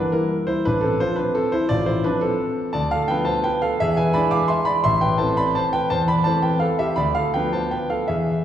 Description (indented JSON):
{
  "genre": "classical, piano waltz",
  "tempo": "170 BPM",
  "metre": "3/4",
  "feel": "uneven beats, rubato",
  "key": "A minor",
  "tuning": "A4 = 440 Hz",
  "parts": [
    { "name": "warm concert grand piano", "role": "solo", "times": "0.0-8.4 s", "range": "A1 to D6", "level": "-18 LUFS", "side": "equal", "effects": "none" }
  ],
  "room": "wet concert hall reverb, RT60 1.7 s",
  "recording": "heard from further back in the room",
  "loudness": "-18 LUFS",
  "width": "side -10 dB against mid",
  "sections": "0.0-8.4 A section",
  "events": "none",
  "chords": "0.0 Edim; 0.7 F/A; 2.7 Bm7b5/D; 3.8 E7; 4.9 Am; 7.0 Bdim/D",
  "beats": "0.31 | 0.66 0.99 1.35 | 1.69 2.04 2.39 | 2.74 3.08 3.44 | 3.80 4.15 4.51 | 4.85 5.20 5.57 | 5.92 6.27 6.63 | 6.99 7.35 7.72 | 8.09"
}